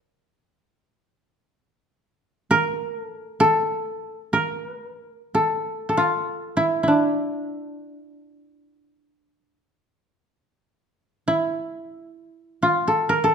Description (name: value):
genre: japanese traditional, Japanese chamber music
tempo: free time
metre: none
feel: none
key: A miyako bushi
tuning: A4 = 440 Hz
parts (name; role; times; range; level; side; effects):
- koto; solo; 0.0-13.3 s; D4 to D5; -20 LUFS; equal; none
room: moderate recital hall reverb, RT60 1.4 s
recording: minimal, uncompressed stereo recording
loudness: -20 LUFS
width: side -7 dB against mid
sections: 0.0-13.3 A section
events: none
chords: none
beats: free time